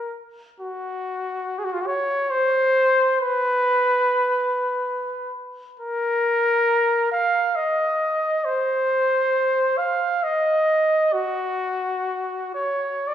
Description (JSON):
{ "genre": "classical, free, expressive piece for unaccompanied trumpet", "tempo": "68 BPM", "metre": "3/4", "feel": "rubato", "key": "unclear", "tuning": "A4 = 440 Hz", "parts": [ { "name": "mellow trumpet", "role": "solo", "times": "0.0-13.1 s", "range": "F4 to F5", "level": "-20 LUFS", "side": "equal", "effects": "none" } ], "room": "wet recital hall reverb, RT60 1.8 s", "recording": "heard from further back in the room", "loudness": "-19 LUFS", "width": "side -10 dB against mid", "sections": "0.0-13.1 A section", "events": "none", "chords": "none", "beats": "| 0.61 1.47 2.35 | 3.23 4.11 4.97 | 5.83 6.70 7.58 | 8.47 9.37 10.26 | 11.15 12.08 13.09" }